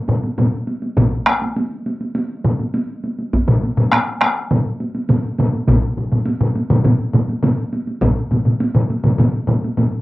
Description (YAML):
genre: japanese traditional, taiko drum ensemble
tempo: 102 BPM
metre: 4/4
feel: straight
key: none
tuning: none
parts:
  - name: solo taiko drums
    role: percussion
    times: 0.1-9.9 s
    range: none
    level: -22 LUFS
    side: right 1 dB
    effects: none
  - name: solo taiko drums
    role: percussion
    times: 0.1-9.9 s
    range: none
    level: -18 LUFS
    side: left 1 dB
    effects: none
  - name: taiko ensemble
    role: percussion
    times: 0.1-9.9 s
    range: none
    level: -19 LUFS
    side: right 2 dB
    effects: none
  - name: taiko ensemble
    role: percussion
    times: 1.0-8.2 s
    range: none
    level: -22 LUFS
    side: equal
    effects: none
room: wet small room ambience, RT60 0.5 s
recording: home recording on cassette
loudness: -16 LUFS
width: side -18 dB against mid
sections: 0.0-10.0 A section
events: none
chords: none